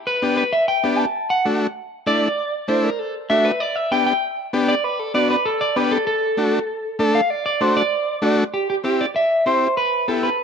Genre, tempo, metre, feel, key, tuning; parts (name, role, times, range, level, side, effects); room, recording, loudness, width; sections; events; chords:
latin; 195 BPM; 4/4; straight; G major; A4 = 441 Hz
clean electric guitar; melody; 0.1-10.4 s; G4 to A5; -19 LUFS; right 1 dB; spring reverb, slapback echo
overdriven combo organ; accompaniment; 0.2-10.3 s; A3 to A4; -19 LUFS; left 2 dB
light reverb; close, detailed microphones; -18 LUFS; side -6 dB against mid
0.0-8.5 A section; 8.5-10.4 B section
clean electric guitar solo 0.0-8.5
0.0 G; 1.1 D; 3.6 G; 6.1 D; 8.5 C; 9.8 Em